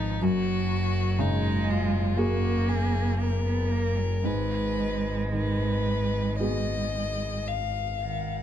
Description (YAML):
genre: neoclassical piano and strings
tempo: 55-63 BPM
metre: 4/4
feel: rubato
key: G# dorian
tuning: A4 = 440 Hz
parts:
  - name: rich violin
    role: melody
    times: 0.0-8.4 s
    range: D#4 to E#5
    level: -32 LUFS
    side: left 5 dB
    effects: tape echo
  - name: rich cello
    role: second line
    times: 0.0-8.4 s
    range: D#3 to B3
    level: -31 LUFS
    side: right 6 dB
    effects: none
  - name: felt-muted upright piano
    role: accompaniment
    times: 0.0-8.4 s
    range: F#2 to G#4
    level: -31 LUFS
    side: equal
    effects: none
  - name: rich double bass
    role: bass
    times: 0.0-8.4 s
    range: F#1 to G#1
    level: -28 LUFS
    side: equal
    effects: none
room: light reverb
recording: dark, warm production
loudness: -24 LUFS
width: side -10 dB against mid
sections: 0.0-8.4 A section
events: none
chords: 0.2 F#add9; 4.3 G#m7